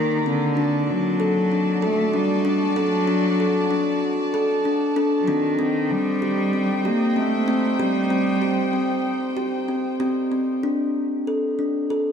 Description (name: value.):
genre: world meditative, meditative tuned percussion.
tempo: 95 BPM.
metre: 4/4.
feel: straight.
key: D phrygian dominant.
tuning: A4 = 436 Hz.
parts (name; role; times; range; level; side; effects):
clear cello; melody; 0.0-9.1 s; D3 to Bb3; -24 LUFS; equal; tape echo.
rich chamber string section; sustained chords; 0.0-10.6 s; Eb4 to Bb5; -28 LUFS; equal; none.
kalimba; arpeggios; 0.0-12.1 s; C4 to Bb4; -22 LUFS; left 1 dB; none.
room: wet church reverb, RT60 3.3 s.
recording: dark, warm production.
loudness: -19 LUFS.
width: side -7 dB against mid.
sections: 0.6-12.1 A section.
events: none.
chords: 0.0 Eb; 0.6 D; 5.6 Cm; 10.6 D5.